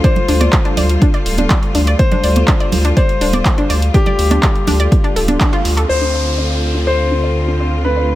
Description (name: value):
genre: progressive house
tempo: 123 BPM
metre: 4/4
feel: straight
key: unclear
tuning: A4 = 441 Hz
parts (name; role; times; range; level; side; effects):
- clear grand piano; melody; 0.0-8.2 s; G4 to C5; -20 LUFS; left 3 dB; sidechain pumping, tape echo
- warm studio string section; sustained chords; 0.0-8.2 s; D3 to F4; -22 LUFS; left 1 dB; vintage 12-bit sampler grit, sidechain pumping
- analog pluck; arpeggios; 0.0-8.0 s; D4 to D5; -21 LUFS; equal; chorus, cassette tape, sidechain pumping, tape echo
- deep house drum kit; drums; 0.0-5.9 s; handclaps, hi-hat; -23 LUFS; right 1 dB; overdrive, low-pass filter on hats, low-pass filter on snare
- electronic kick drum; drums; 0.0-5.5 s; none; -14 LUFS; equal; overdrive
- congas and woodblock; percussion; 0.2-5.9 s; none; -21 LUFS; right 4 dB; sidechain pumping on perc
- round analog bass; bass; 0.3-8.2 s; D1 to D2; -16 LUFS; equal; sidechain pumping
- downlifter; sound effects; 5.9-8.2 s; none; -25 LUFS; equal; none
room: small room ambience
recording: none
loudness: -12 LUFS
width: side -15 dB against mid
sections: 0.0-5.9 A section; 5.9-8.2 B section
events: band accent 5.4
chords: 0.0 Fadd9/D; 5.9 Dm7